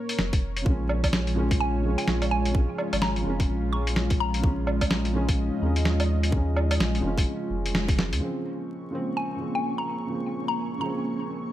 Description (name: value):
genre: future garage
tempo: 127 BPM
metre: 4/4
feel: swing 60% on 16ths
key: Bb minor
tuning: A4 = 441 Hz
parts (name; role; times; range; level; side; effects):
- dark analog pad; sustained chords; 0.0-11.5 s; Ab3 to Db6; -32 LUFS; equal; chorus, vintage 12-bit sampler grit, sidechain pumping
- lo-fi sampler-style drum kit; drums; 0.1-8.2 s; hi-hat, snare drum, woodblock; -28 LUFS; right 1 dB; studio reverb
- warm sub bass; bass; 0.2-8.2 s; F1 to Eb2; -27 LUFS; equal; sidechain pumping
- electronic kick drum; drums; 0.3-8.0 s; none; -24 LUFS; equal; studio reverb
- felt-muted upright piano; accompaniment; 0.6-11.5 s; Db3 to Db4; -31 LUFS; equal; vintage 12-bit sampler grit, sidechain pumping, low-pass filter, dub echo
- mallet-like synth pluck; melody; 1.6-4.7, 9.2-11.5 s; Ab5 to Db6; -32 LUFS; equal; chorus, phaser, dub echo
- flickering grainy texture; texture; 8.8-11.5 s; Db4 to Db6; -40 LUFS; right 1 dB; built-in reverb
room: light reverb, digital ambience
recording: vinyl crackle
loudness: -23 LUFS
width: side -13 dB against mid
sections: 0.0-8.2 A section; 8.2-11.5 B section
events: band accent 7.7; filter sweep on felt piano 8.2-11.5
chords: 0.0 Bbm7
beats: 0.19 | 0.66 1.13 1.61 2.08 | 2.55 3.02 3.50 3.97 | 4.44 4.91 5.38 5.86 | 6.33 6.80 7.28 7.75 | 8.22 8.69 9.16 9.64 | 10.11 10.58 11.05